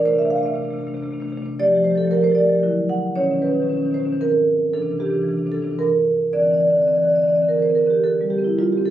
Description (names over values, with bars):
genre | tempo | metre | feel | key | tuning
classical, contemporary piece for solo marimba | 114 BPM | 3/4 | rubato | D minor | A4 = 440 Hz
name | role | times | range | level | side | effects
marimba with soft mallets | solo | 0.0-8.9 s | G2 to F#5 | -17 LUFS | right 1 dB | none
room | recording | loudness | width
moderate stone room reverb, RT60 1.0 s | recorded on a phone in the room, club reverb, compression | -17 LUFS | side -12 dB against mid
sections
0.0-8.0 A section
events
none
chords
0.0 Csus2; 1.6 Fadd9; 2.6 Dadd9; 3.2 Badd9; 4.2 G#add9; 4.7 Cadd9; 5.8 Gm6; 6.3 Dsus2; 8.0 D7sus4